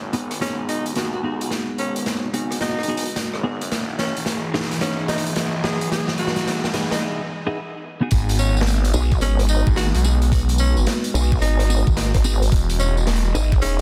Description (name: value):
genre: glitch hop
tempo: 109 BPM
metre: 4/4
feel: swing 64% on 16ths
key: G# minor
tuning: A4 = 436 Hz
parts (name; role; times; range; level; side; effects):
- warbly tape-like pad; sustained chords; 0.0-13.8 s; E3 to D#5; -33 LUFS; equal; chorus, built-in reverb, sidechain pumping
- phased detuned saw bass; bass; 0.0-13.3 s; E1 to D#2; -25 LUFS; equal; phaser, overdrive, high-pass filter
- riser; sound effects; 0.8-7.0 s; none; -36 LUFS; equal; none
- clean electric guitar; stabs; 0.1-13.8 s; B3 to G#4; -30 LUFS; equal; lush chorus, sidechain pumping, low-pass filter, digital delay
- raw garage drum kit; drums; 0.1-13.8 s; hi-hat, rim click, snare drum, tambourine; -29 LUFS; equal; none
- growling tenor saxophone; melody; 0.4-13.8 s; C#4 to G#4; -32 LUFS; equal; vintage 12-bit sampler grit, low-pass filter, digital delay
- electronic kick drum; drums; 8.1-13.6 s; none; -21 LUFS; equal; none
- vowel-sweep wobble bass; bass; 8.9-13.8 s; E1 to B1; -21 LUFS; equal; chorus
room: light reverb, studio reverb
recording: dense, heavily limited modern master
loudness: -21 LUFS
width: mono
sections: 0.0-8.1 A section; 8.1-13.8 B section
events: build-up 0.0-8.1; drum fill 0.0-7.0; filter sweep on clean electric guitar 0.0-8.1; filter sweep on ambient pad 0.0-8.1; break 7.0-8.1; drop 8.1-13.8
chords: 0.0 G#m7; 3.7 Emaj7; 8.1 G#m7; 12.5 Emaj7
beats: 0.41 0.96 | 1.51 2.06 2.61 3.16 | 3.71 4.26 4.81 5.37 | 5.92 6.47 7.02 7.57 | 8.12 8.67 9.22 9.77 | 10.32 10.87 11.42 11.97 | 12.52 13.07 13.62